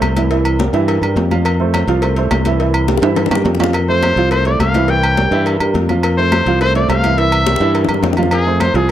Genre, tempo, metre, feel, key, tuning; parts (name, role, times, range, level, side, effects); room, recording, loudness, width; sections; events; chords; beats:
latin, salsa; 210 BPM; 4/4; straight; F major; A4 = 441 Hz
warm upright piano; accompaniment; 0.0-8.9 s; E3 to F5; -18 LUFS; right 6 dB
modern bright fingered electric bass; bass; 0.0-8.9 s; C2 to G2; -16 LUFS; left 1 dB
agogo bells and timbales; percussion; 0.0-8.9 s; -22 LUFS; right 2 dB
congas; percussion; 0.0-8.9 s; -23 LUFS; left 3 dB
cowbell and bongos; percussion; 0.0-8.9 s; -23 LUFS; left 7 dB
bright trumpet; melody; 3.9-8.9 s; Ab4 to G5; -17 LUFS; left 2 dB
small room ambience; dry, close 1970s-style studio recording, faint mains hum; -12 LUFS; side -11 dB against mid
0.0-3.7 A section; 3.7-8.9 B section
drum fill 2.9-3.7, 7.5-8.3; trumpet solo 3.7-8.9
0.3 C7; 1.5 Fmaj7; 2.6 C7; 3.7 Fmaj7; 4.9 C7; 6.0 Fmaj7; 7.2 C7; 8.3 F
0.02 | 0.30 0.59 0.88 1.16 | 1.45 1.74 2.02 2.31 | 2.60 2.88 3.17 3.46 | 3.74 4.03 4.32 4.60 | 4.89 5.18 5.46 5.75 | 6.04 6.32 6.61 6.89 | 7.18 7.46 7.75 8.04 | 8.32 8.61 8.89